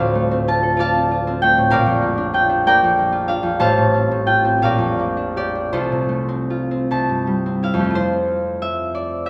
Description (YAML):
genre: classical, solo harp piece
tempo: 50-66 BPM (dotted quarters)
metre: 6/8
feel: rubato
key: F major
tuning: A4 = 437 Hz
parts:
  - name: concert harp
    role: solo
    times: 0.0-9.3 s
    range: A1 to C6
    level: -18 LUFS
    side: equal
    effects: none
room: wet concert hall reverb, RT60 2.1 s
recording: none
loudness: -18 LUFS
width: mono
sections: 0.0-7.9 A section; 7.9-9.3 B section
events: none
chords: 0.0 Dm7; 1.7 Bb; 3.6 F/A; 4.6 Gm7/Bb; 5.7 F/C; 6.9 C; 7.9 F